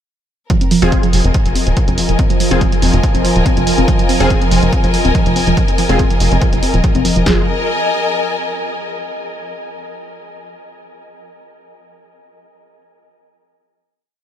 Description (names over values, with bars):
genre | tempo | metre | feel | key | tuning
driving peak-time techno | 142 BPM | 4/4 | straight | F minor | A4 = 440 Hz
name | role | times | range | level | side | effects
warbly dusty pluck | riff | 0.5-7.5 s | F3 to C4 | -19 LUFS | right 2 dB | chorus, phaser, cassette tape, sidechain pumping, tape echo
analog drone | drone | 1.5-7.3 s | F3 | -23 LUFS | equal | chorus, sidechain pumping
electronic hi-hat | drums | 0.5-7.2 s | none | -24 LUFS | right 2 dB | none
punchy analog drum machine | drums | 0.5-7.4 s | kick drum, snare drum | -16 LUFS | equal | none
clear symphonic string section | texture | 0.5-8.9 s | Bb4 to Ab5 | -20 LUFS | left 2 dB | sidechain pumping
rave stab | stabs | 0.8-7.4 s | C4 to Ab4 | -23 LUFS | equal | chorus, built-in reverb, phaser, cassette tape, sidechain pumping, tape echo
tight sequencer bass | bass | 0.8-7.5 s | Eb1 to F1 | -16 LUFS | equal | sidechain pumping
room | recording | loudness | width
light reverb | none | -12 LUFS | side -10 dB against mid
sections
0.5-7.3 groove; 7.3-9.0 final chord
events
none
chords
0.5 Fm